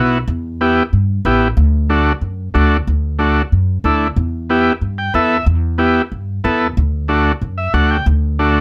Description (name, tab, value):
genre	latin, cumbia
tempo	184 BPM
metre	4/4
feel	straight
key	E minor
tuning	A4 = 440 Hz
part	overdriven combo organ	accompaniment	0.0-8.6 s	A3 to G5	-17 LUFS	equal	none
part	upright bass	bass	0.0-8.6 s	A1 to G2	-19 LUFS	equal	none
room	light reverb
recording	none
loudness	-16 LUFS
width	mono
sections	0.3-8.6 A section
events	transistor combo organ fill 4.8-5.5, 7.4-8.1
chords	0.3 Em; 1.6 D; 4.2 Em; 6.8 D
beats	| 0.28 0.60 0.92 1.25 | 1.57 1.90 2.22 2.55 | 2.87 3.20 3.52 3.85 | 4.17 4.50 4.83 5.15 | 5.48 5.80 6.13 6.45 | 6.78 7.10 7.43 7.75 | 8.08 8.40